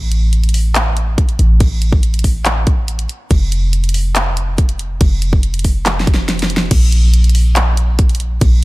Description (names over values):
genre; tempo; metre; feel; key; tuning
future bass; 141 BPM; 4/4; half-time; unclear; A4 = 442 Hz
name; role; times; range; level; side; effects
warm 808-style bass; bass; 0.0-8.6 s; F1 to Bb1; -14 LUFS; equal; sidechain pumping
pop drum kit; drums; 0.1-8.5 s; crash cymbal, handclaps, hi-hat, snare drum; -20 LUFS; equal; none
electronic kick drum; drums; 1.2-8.5 s; none; -13 LUFS; equal; none
room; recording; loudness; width
little or no reverb; none; -12 LUFS; side -20 dB against mid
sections
0.0-6.7 A section; 6.7-8.6 A section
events
drop 0.0-6.7, 6.7-8.6; drum fill 5.9-6.7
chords
none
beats
0.33 0.75 1.18 | 1.60 2.03 2.46 2.88 | 3.31 3.73 4.16 4.58 | 5.01 5.43 5.86 6.29 | 6.71 7.14 7.56 7.99 | 8.41